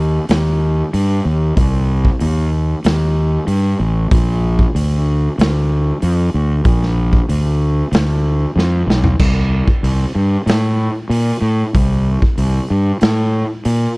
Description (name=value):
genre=stoner and doom metal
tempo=94 BPM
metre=4/4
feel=straight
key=C dorian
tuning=A4 = 441 Hz
part: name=fuzz fingered electric bass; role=bass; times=0.0-13.9 s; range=A1 to Bb2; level=-14 LUFS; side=equal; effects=overdrive
part: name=raw garage drum kit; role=drums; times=0.3-13.8 s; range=crash cymbal, hi-hat, kick drum, snare drum, toms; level=-18 LUFS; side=equal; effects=none
room=little or no reverb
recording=dry, close 1970s-style studio recording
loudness=-13 LUFS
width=side -29 dB against mid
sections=0.0-9.2 A section; 9.2-14.0 B section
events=drum fill 8.6-9.2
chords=none